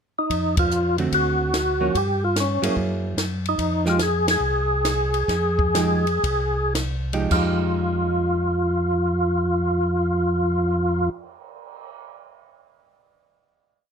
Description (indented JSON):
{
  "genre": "soul jazz organ trio",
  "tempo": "103-147 BPM",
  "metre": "4/4",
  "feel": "swing 66% on 8ths",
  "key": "F minor",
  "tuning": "A4 = 441 Hz",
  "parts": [
    { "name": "overdriven tonewheel organ", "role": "melody", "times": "0.2-11.1 s", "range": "Db4 to Ab4", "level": "-22 LUFS", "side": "equal", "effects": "slow rotary speaker, chorus vibrato" },
    { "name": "mellow tonewheel organ", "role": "bass", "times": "0.3-11.1 s", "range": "C2 to G2", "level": "-25 LUFS", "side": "equal", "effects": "chorus vibrato, slow rotary speaker" },
    { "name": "compact cocktail drum kit", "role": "drums", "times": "0.3-11.8 s", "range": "crash cymbal, cymbal swell, hi-hat, kick drum, ride cymbal, snare drum", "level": "-28 LUFS", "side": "equal", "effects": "none" },
    { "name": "hollow-body jazz guitar", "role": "accompaniment", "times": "1.0-11.2 s", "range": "D3 to Ab4", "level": "-27 LUFS", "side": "right 4 dB", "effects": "none" }
  ],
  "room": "light reverb",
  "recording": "close, detailed microphones",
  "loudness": "-20 LUFS",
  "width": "side -7 dB against mid",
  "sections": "0.0-0.3 pickup bar; 0.3-7.3 A section; 7.3-12.0 final chord",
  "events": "band accent 0.5, 4.2; slowing down 3.6-7.3",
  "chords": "0.3 F5; 1.1 D7; 1.9 Gdim; 2.8 Gb9; 3.6 Fm9",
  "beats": "| 0.31 0.72 1.13 1.54 | 1.95 2.35 2.77 3.17 | 3.58 4.00 4.41 4.84 | 5.29 5.75 6.24 6.76 | 7.32 7.90 8.48 9.06 | 9.64 10.22 10.80 11.38"
}